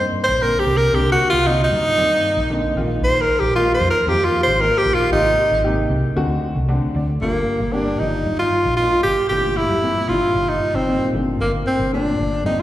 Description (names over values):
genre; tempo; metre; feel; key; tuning
electric jazz fusion; 115 BPM; 4/4; straight; C minor; A4 = 440 Hz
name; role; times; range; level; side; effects
breathy tenor saxophone; melody; 0.0-12.6 s; Bb3 to C5; -17 LUFS; equal; slapback echo
dark baby grand piano; accompaniment; 0.0-12.6 s; Bb2 to F#5; -25 LUFS; left 1 dB; slapback echo
hollow-body short-scale fingered electric bass; bass; 0.0-12.6 s; G1 to G2; -23 LUFS; equal; none
room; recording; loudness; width
moderate plate reverb, RT60 3.2 s; live gig heard through the venue's PA, recital hall reverb; -16 LUFS; side -13 dB against mid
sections
0.0-7.2 A section; 7.2-12.6 B section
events
tenor saxophone solo 0.0-7.2; grand piano fill 6.4-7.2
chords
0.0 Cm9; 2.8 Bb7sus4; 5.1 Abmaj9; 6.2 D7; 7.2 Gm7; 8.0 Ebmaj9/G; 9.3 C13/G; 10.1 Ebmaj13/G; 11.1 Bbmaj9/G